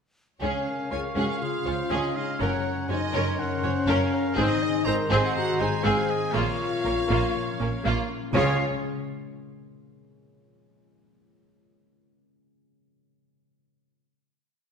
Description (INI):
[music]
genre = cinematic, heroic adventure film score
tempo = 121 BPM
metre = 4/4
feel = straight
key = Db major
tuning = A4 = 439 Hz
[part]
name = warm symphonic violin section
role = melody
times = 0.4-8.6 s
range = F4 to Db5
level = -33 LUFS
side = left 1 dB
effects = none
[part]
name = clear oboe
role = second line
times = 0.4-8.6 s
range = C5 to Ab5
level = -35 LUFS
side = right 2 dB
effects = none
[part]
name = mellow clarinet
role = second line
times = 0.4-8.6 s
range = Ab4 to Eb5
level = -37 LUFS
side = left 1 dB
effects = none
[part]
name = silver concert flute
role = second line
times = 0.4-8.6 s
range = F5 to Db6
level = -36 LUFS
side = left 1 dB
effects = none
[part]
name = warm symphonic violin section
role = second line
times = 0.4-8.6 s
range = Db5 to Bb5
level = -35 LUFS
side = equal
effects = none
[part]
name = rich symphonic viola section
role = accompaniment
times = 0.4-8.6 s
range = Bb3 to Gb4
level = -31 LUFS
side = right 1 dB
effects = none
[part]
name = mellow French horn section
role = sustained chords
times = 0.4-8.6 s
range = Db4 to Bb4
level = -29 LUFS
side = left 2 dB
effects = none
[part]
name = concert harp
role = arpeggios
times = 0.4-10.4 s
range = Gb2 to Db5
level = -34 LUFS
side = left 8 dB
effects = none
[part]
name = rich studio cello section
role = bass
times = 0.4-8.6 s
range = Db2 to Db3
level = -32 LUFS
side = right 3 dB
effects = none
[part]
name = rich symphonic double bass section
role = bass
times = 0.4-8.6 s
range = Gb1 to Db2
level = -32 LUFS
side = right 3 dB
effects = none
[sound]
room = wet scoring stage reverb, RT60 1.5 s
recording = none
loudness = -23 LUFS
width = side -6 dB against mid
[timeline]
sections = 0.4-8.4 theme; 8.4-10.3 final chord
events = none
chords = 0.4 Db; 2.4 Gb; 4.4 Ab; 6.4 Bbm; 8.4 Db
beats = | 0.42 0.92 1.42 1.91 | 2.41 2.90 3.39 3.88 | 4.38 4.87 5.36 5.85 | 6.35 6.85 7.36 7.86 | 8.36 8.86 9.35 9.85